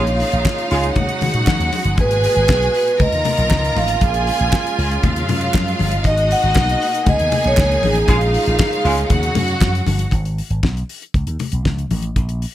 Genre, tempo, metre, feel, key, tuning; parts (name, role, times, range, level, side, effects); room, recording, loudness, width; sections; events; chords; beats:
disco; 118 BPM; 4/4; straight; G# dorian; A4 = 440 Hz
vibraphone with medium mallets; melody; 0.0-9.3 s; G#4 to F#5; -19 LUFS; right 1 dB
warm symphonic violin section; second line; 0.0-10.1 s; D#4 to A#5; -22 LUFS; right 1 dB
clear studio string section; sustained chords; 0.0-10.1 s; A#2 to F#4; -26 LUFS; right 1 dB
dark horn section; stabs; 0.0-0.9, 8.1-9.0 s; G#3 to G#4; -21 LUFS; right 2 dB
slap bass with an envelope filter; bass; 0.0-12.4 s; G1 to D#3; -20 LUFS; equal
damped 70s drum kit; drums; 0.1-12.5 s; hi-hat, kick drum, snare drum; -20 LUFS; equal
congas; percussion; 0.5-12.3 s; -25 LUFS; left 5 dB
group handclap; percussion; 0.5-9.7 s; -28 LUFS; right 6 dB
little or no reverb; -15 LUFS; side -13 dB against mid
0.0-10.1 A section; 10.1-12.5 B section
band accent 0.0-2.0, 8.1-10.1
0.0 A#m7; 1.0 D#m7; 2.0 G#m9; 3.0 C#13; 4.0 A#m7; 5.0 D#m11; 6.1 G#m9; 7.1 C#sus2; 8.1 A#m7; 9.1 D#m7; 10.1 G#m; 11.1 C#sus2
0.45 0.96 1.47 | 1.98 2.49 3.00 3.51 | 4.02 4.53 5.04 5.54 | 6.05 6.56 7.07 7.58 | 8.09 8.59 9.10 9.61 | 10.12 10.63 11.14 11.65 | 12.17